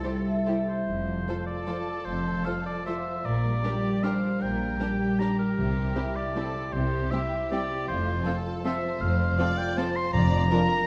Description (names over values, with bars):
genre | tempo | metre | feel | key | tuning
classical, orchestral ballroom waltz | 156 BPM | 3/4 | uneven beats, rubato | F major | A4 = 440 Hz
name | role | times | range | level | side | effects
warm symphonic violin section | melody | 0.0-10.9 s | F4 to D5 | -39 LUFS | equal | none
warm symphonic violin section | second line | 0.0-10.6 s | E4 to C5 | -42 LUFS | equal | none
warm symphonic viola section | accompaniment | 0.0-10.6 s | F3 to F4 | -37 LUFS | equal | none
mellow French horn section | sustained chords | 0.0-0.7 s | G3 to E4 | -42 LUFS | equal | none
concert harp | arpeggios | 0.0-10.9 s | F2 to E5 | -33 LUFS | equal | none
clear symphonic cello section | bass | 0.0-10.4 s | F2 to A4 | -36 LUFS | equal | none
clear oboe | second line | 0.7-10.9 s | Bb4 to C6 | -34 LUFS | equal | none
warm studio double bass section | bass | 0.9-10.4 s | F1 to C2 | -34 LUFS | equal | none
timpani | percussion | 5.6-6.1, 10.1-10.7 s | F2 to C3 | -32 LUFS | equal | none
room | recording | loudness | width
wet recital hall reverb, RT60 1.4 s | dark, warm production | -27 LUFS | mono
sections
0.9-10.9 A section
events
none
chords
0.0 C; 0.9 F; 3.3 Gm/Bb; 5.6 C7; 7.9 F; 10.1 Bb/F